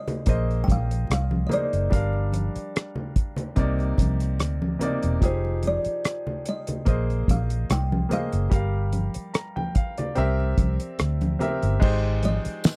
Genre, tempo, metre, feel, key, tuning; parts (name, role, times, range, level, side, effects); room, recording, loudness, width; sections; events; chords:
lush 1970s-style soul; 73 BPM; 4/4; swing 54% on 16ths; A4 = 440 Hz
kalimba; melody; 0.0-12.8 s; C5 to G5; -32 LUFS; equal
clear concert grand piano; accompaniment; 0.0-12.8 s; C3 to Bb5; -33 LUFS; equal
cloth-damped thuddy drum kit; drums; 0.1-12.8 s; crash cymbal, hi-hat, kick drum, rim click, snare drum; -26 LUFS; equal
congas; percussion; 0.1-12.4 s; -34 LUFS; equal
vintage muted fingered electric bass; bass; 0.3-12.5 s; E1 to D2; -27 LUFS; equal
tambourine; percussion; 12.6-12.8 s; -37 LUFS; equal
little or no reverb; dry, close 1970s-style studio recording; -25 LUFS; mono
0.0-11.8 A section
0.3 Bb9sus4; 1.9 Gm7; 3.6 Cm9; 5.2 Fm9; 6.9 Bb9sus4; 8.5 Gm7; 10.2 C7; 11.8 Abmaj7